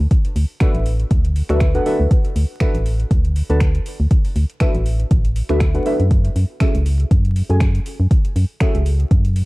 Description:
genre	deep house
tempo	120 BPM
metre	4/4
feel	swing 55% on 16ths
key	unclear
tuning	A4 = 442 Hz
part	organ-like FM bass	bass	0.0-9.4 s	A1 to F#2	-17 LUFS	equal	sidechain pumping
part	deep house drum kit	drums	0.1-9.5 s	finger snaps, hi-hat	-33 LUFS	right 1 dB	overdrive, small room reverb
part	electronic kick drum	drums	0.1-9.2 s	none	-16 LUFS	equal	overdrive, small room reverb
part	deep mellow chord stab	stabs	0.6-8.8 s	C#4 to A5	-23 LUFS	equal	chorus, sidechain pumping, analog delay
room	little or no reverb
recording	dark, warm production, vinyl crackle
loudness	-15 LUFS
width	side -22 dB against mid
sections	0.0-9.5 A section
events	none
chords	0.0 D69; 6.1 F#m9

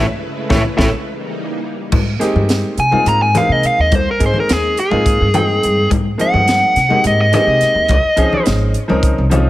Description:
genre	electric jazz fusion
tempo	211 BPM (eighths)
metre	7/8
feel	straight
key	Ab major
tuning	A4 = 443 Hz
part	dark smooth lead guitar	melody	0.0-8.4 s	Ab4 to Bb5	-15 LUFS	equal	overdrive
part	clear grand piano	accompaniment	0.0-9.5 s	F3 to G5	-20 LUFS	equal	none
part	string machine, violas	sustained chords	0.0-1.9 s	C#3 to B4	-25 LUFS	equal	ensemble chorus
part	upright bass	bass	0.0-9.5 s	Ab1 to C3	-17 LUFS	equal	none
part	crisp fusion drum kit	drums	0.5-9.4 s	crash cymbal, hi-hat, kick drum, snare drum	-19 LUFS	equal	none
part	congas	percussion	0.5-9.4 s	none	-22 LUFS	left 4 dB	none
room	light reverb, studio ambience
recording	none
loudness	-12 LUFS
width	side -16 dB against mid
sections	0.0-1.9 A section; 1.9-9.5 B section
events	band accent 0.0-1.9; drum fill 1.1-1.9; lead electric guitar solo 1.9-9.5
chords	0.0 Amaj9; 1.1 D#7b9; 1.9 Abmaj9; 7.9 Dbmaj9

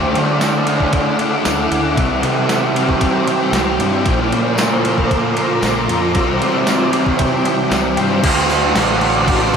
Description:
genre	rock, shoegaze and dream pop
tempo	115 BPM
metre	4/4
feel	straight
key	D mixolydian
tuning	A4 = 441 Hz
part	granular cloud pad	sustained chords	0.0-9.6 s	E4 to D6	-20 LUFS	equal	built-in reverb, ensemble chorus
part	overdriven semi-hollow guitar	riff	0.0-9.6 s	Bb2 to F#4	-20 LUFS	right 7 dB	reverse reverb
part	thick fuzz guitar	riff	0.0-9.6 s	Bb2 to D4	-20 LUFS	left 7 dB	distortion, ensemble chorus
part	fuzz fingered electric bass	bass	0.0-9.6 s	A1 to D3	-22 LUFS	equal	overdrive
part	clean 12-bit digital drum machine	drums	0.2-9.6 s	crash cymbal, kick drum, ride cymbal, snare drum	-21 LUFS	equal	none
part	tambourine	percussion	0.4-9.6 s	none	-32 LUFS	right 8 dB	none
room	wet lush hall reverb, RT60 2.2 s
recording	dreamy mix soaked in reverb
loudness	-13 LUFS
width	side -6 dB against mid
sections	0.0-8.2 A section; 8.2-9.6 B section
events	none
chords	0.0 Dadd9; 2.0 Cadd9; 4.1 Bbadd9; 6.2 Cadd9; 8.2 D7

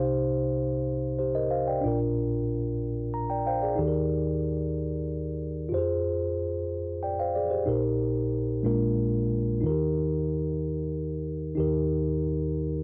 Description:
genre	gospel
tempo	62 BPM (dotted quarters)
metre	6/8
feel	straight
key	Eb major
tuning	A4 = 440 Hz
part	mellow tine electric piano	solo	0.0-12.8 s	Bb1 to Bb5	-28 LUFS	equal	none
room	little or no reverb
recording	dry, close 1970s-style studio recording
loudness	-28 LUFS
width	mono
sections	0.0-12.8 A section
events	tine electric piano fill 2.8-3.8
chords	0.0 Cm; 1.8 Bb; 3.8 Eb; 5.7 Fm; 7.7 Eb/Bb; 8.6 Bb7; 9.6 Eb

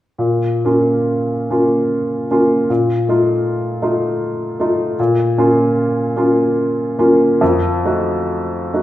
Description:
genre	classical, romantic nocturne for solo piano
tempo	65-82 BPM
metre	3/4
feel	rubato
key	Bb minor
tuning	A4 = 440 Hz
part	clear upright piano	solo	0.2-8.8 s	F2 to Gb4	-14 LUFS	equal	none
room	wet recital hall reverb, RT60 1.5 s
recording	recorded in a church or concert hall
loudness	-14 LUFS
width	side -13 dB against mid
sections	0.2-8.8 A section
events	none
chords	0.2 Bbm; 2.7 F7/Bb; 5.0 Bbm; 7.4 F7b9

